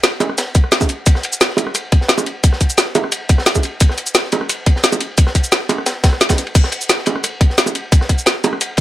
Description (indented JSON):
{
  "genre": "drum and bass",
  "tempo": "175 BPM",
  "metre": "4/4",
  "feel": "straight",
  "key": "none",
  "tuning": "none",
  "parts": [
    { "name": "crunchy breakbeat drum kit", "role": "drums", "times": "0.0-8.8 s", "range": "ride cymbal, snare drum", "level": "-23 LUFS", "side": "equal", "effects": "high-pass filter on cymbals, high-pass filter on snare, high-pass filter on room" },
    { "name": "drum and bass drum kit", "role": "drums", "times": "0.0-8.8 s", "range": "crash cymbal, hi-hat, rim click, shaker, snare drum", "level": "-16 LUFS", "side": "equal", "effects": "none" },
    { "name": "bongos", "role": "percussion", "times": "0.2-8.5 s", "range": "none", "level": "-19 LUFS", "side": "right 4 dB", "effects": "none" },
    { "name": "electronic kick drum", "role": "drums", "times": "0.6-8.8 s", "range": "none", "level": "-12 LUFS", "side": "equal", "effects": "none" }
  ],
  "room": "studio ambience",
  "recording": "none",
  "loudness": "-13 LUFS",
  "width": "side -14 dB against mid",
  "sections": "0.0-8.8 A section",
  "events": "none",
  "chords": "none"
}